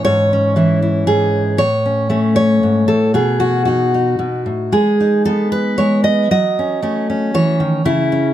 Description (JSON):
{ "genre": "folk, solo fingerstyle acoustic guitar", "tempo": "116 BPM", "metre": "3/4", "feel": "rubato", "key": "unclear", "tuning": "A4 = 440 Hz", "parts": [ { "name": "fingerpicked steel-string acoustic guitar", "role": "solo", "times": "0.0-8.3 s", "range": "G#2 to D#5", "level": "-13 LUFS", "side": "equal", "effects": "none" } ], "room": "light reverb", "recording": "close, detailed microphones", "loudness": "-13 LUFS", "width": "side -12 dB against mid", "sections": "0.0-8.3 A section", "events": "none", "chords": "0.0 C#m/G#; 1.6 Amaj7; 3.1 B; 4.7 G#m; 6.3 F#m" }